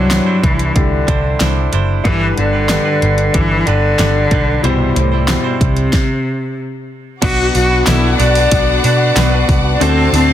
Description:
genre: piano-driven pop.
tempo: 93 BPM.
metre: 4/4.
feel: straight.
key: unclear.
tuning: A4 = 444 Hz.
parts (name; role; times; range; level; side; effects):
clear cello; melody; 0.0-10.3 s; A2 to F#4; -16 LUFS; equal; ping-pong delay.
warm concert grand piano; accompaniment; 0.0-10.3 s; G2 to D5; -20 LUFS; left 6 dB; none.
direct-recorded clean electric guitar; riff; 0.0-10.3 s; B2 to C5; -24 LUFS; right 11 dB; none.
vintage muted picked electric bass; bass; 0.0-10.3 s; F#1 to B2; -16 LUFS; equal; none.
pop drum kit; drums; 0.1-10.3 s; crash cymbal, handclaps, hi-hat, kick drum, snare drum; -17 LUFS; equal; none.
warm symphonic violin section; second line; 7.2-10.3 s; F#4 to A5; -21 LUFS; left 2 dB; none.
warm studio string section; sustained chords; 7.2-10.3 s; A4 to D6; -26 LUFS; left 1 dB; none.
room: light reverb.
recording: dense, heavily limited modern master.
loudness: -11 LUFS.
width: side -11 dB against mid.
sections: 0.0-7.2 A section; 7.2-10.3 B section.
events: stop 5.9-7.2.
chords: 0.0 Cadd9; 2.1 G; 4.6 C; 7.2 Bm; 9.8 D7.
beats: 0.11 0.76 1.41 | 2.05 2.70 3.35 3.99 | 4.64 5.29 5.93 6.58 | 7.22 7.87 8.52 9.16 | 9.81.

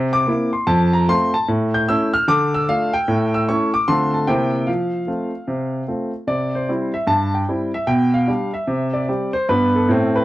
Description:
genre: jazz, stride piano.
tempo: 150 BPM.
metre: 4/4.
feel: swing 65% on 8ths.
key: F major, C major from 6.3 s.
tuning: A4 = 440 Hz.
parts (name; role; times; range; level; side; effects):
warm grand piano; solo; 0.0-10.2 s; F2 to G6; -17 LUFS; equal; none.
room: light reverb.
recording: dark, warm production.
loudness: -17 LUFS.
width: side -16 dB against mid.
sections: 0.0-6.3 A section; 6.3-10.2 B section.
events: none.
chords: 0.0 C7; 0.7 F; 1.5 A; 2.3 Dm; 3.1 A; 3.9 Dm7; 4.3 C7; 4.7 F; 6.3 C; 7.9 G/B; 8.7 C5; 9.5 G.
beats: 0.27 0.67 1.07 | 1.47 1.88 2.27 2.68 | 3.08 3.48 3.88 4.28 | 4.68 5.08 5.48 5.88 | 6.28 6.68 7.08 7.48 | 7.88 8.28 8.68 9.08 | 9.48 9.88.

